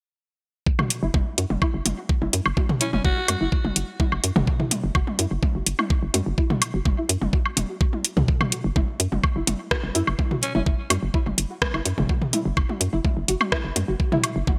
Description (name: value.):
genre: minimal techno.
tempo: 126 BPM.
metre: 4/4.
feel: straight.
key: unclear.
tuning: A4 = 440 Hz.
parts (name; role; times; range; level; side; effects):
electronic kick drum; drums; 0.7-14.6 s; none; -25 LUFS; equal; overdrive.
string-like resonator pluck; riff; 0.8-14.5 s; E4 to A4; -34 LUFS; equal; ensemble chorus, sidechain pumping, digital delay.
electronic toms and woodblock; percussion; 0.8-14.6 s; none; -29 LUFS; equal; gated reverb, digital delay.
garage drum kit; drums; 0.9-14.3 s; hi-hat, rim click; -25 LUFS; equal; overdrive, gated reverb.
hollow knocking FM bass; bass; 1.0-14.6 s; E1 to F#2; -28 LUFS; equal; sidechain pumping.
raspy alto saxophone; melody; 2.8-3.5, 10.4-10.6 s; C#4 to F#4; -33 LUFS; equal; digital delay.
room: light reverb.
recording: bright 1980s-style digital production.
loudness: -23 LUFS.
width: mono.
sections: 0.7-14.6 A section.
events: filter sweep on synth pluck 0.7-14.6.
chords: 0.7 F#5.